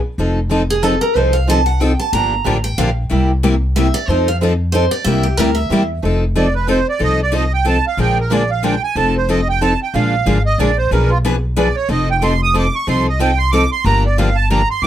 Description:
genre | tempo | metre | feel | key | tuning
acoustic string swing (jazz manouche) | 184 BPM | 3/4 | swing 59% on 8ths | F mixolydian | A4 = 438 Hz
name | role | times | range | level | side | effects
picked steel-string acoustic guitar | accompaniment | 0.2-14.9 s | B2 to B4 | -20 LUFS | left 4 dB | none
picked steel-string acoustic guitar | accompaniment | 0.2-14.9 s | B2 to B4 | -22 LUFS | right 4 dB | none
upright bass | bass | 0.2-14.9 s | F1 to F2 | -17 LUFS | equal | none
picked steel-string acoustic guitar | second line | 0.7-5.9 s | G4 to Bb5 | -18 LUFS | right 2 dB | none
accordion | melody | 6.4-14.9 s | F4 to Eb6 | -18 LUFS | right 5 dB | light tremolo tuning
room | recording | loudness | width
light reverb | close, detailed microphones | -13 LUFS | side -11 dB against mid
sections
0.0-6.0 A section; 6.0-14.9 A section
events
steel-string acoustic guitar solo 0.0-6.0; accordion solo 6.0-14.9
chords
0.2 F7; 2.1 Gm7; 3.1 C7; 4.1 F7; 5.1 C7; 6.0 F7; 8.0 Bb7; 9.0 F7; 9.9 Bb7; 10.9 Bdim7; 11.9 F7; 13.8 Gm7

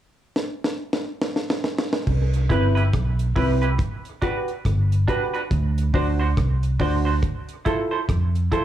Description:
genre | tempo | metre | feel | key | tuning
roots reggae | 70 BPM | 4/4 | swing 60% on 16ths | unclear | A4 = 440 Hz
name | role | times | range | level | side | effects
deep reggae drum kit | drums | 0.4-8.6 s | crash cymbal, hi-hat, kick drum, rim click, snare drum | -25 LUFS | equal | dub echo
vintage muted fingered electric bass | bass | 2.1-8.5 s | G1 to F2 | -20 LUFS | equal | none
semi-hollow electric guitar | accompaniment | 2.5-8.6 s | D4 to C5 | -28 LUFS | right 6 dB | lush chorus, dub echo, plate reverb
dark grand piano | stabs | 2.5-8.6 s | C4 to C5 | -26 LUFS | left 1 dB | plate reverb
room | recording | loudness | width
light reverb | small room reverb | -20 LUFS | side -11 dB against mid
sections
0.0-2.1 A section; 2.1-8.6 B section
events
drum fill 0.4-2.1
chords
0.0 N.C.; 2.1 Cmaj7; 3.8 Gmaj7; 5.5 D7; 7.2 Fmaj7

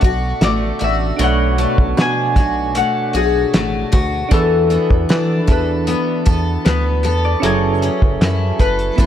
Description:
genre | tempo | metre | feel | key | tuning
indie pop, bedroom pop | 77 BPM | 4/4 | straight | B dorian | A4 = 441 Hz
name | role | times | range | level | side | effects
concert harp | melody | 0.0-9.1 s | G#4 to G#5 | -20 LUFS | left 4 dB | lush chorus, tape echo
picked steel-string acoustic guitar | accompaniment | 0.0-9.1 s | B2 to A4 | -21 LUFS | left 2 dB | analog chorus, warbly pitch drift, tape echo
soft electric-piano-like synth keys | accompaniment | 0.0-9.1 s | A3 to D5 | -24 LUFS | right 6 dB | chorus, tremolo, cassette tape, tape echo
chorused synth bass | bass | 0.0-9.1 s | E1 to E3 | -19 LUFS | equal | none
cloth-damped thuddy drum kit | drums | 0.0-9.1 s | hi-hat, kick drum, snare drum | -17 LUFS | equal | none
room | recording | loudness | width
light reverb | echo-heavy mix | -14 LUFS | side -10 dB against mid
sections
0.0-9.1 A section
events
none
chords
0.0 Bm7; 4.3 E7sus4; 7.4 F#m7

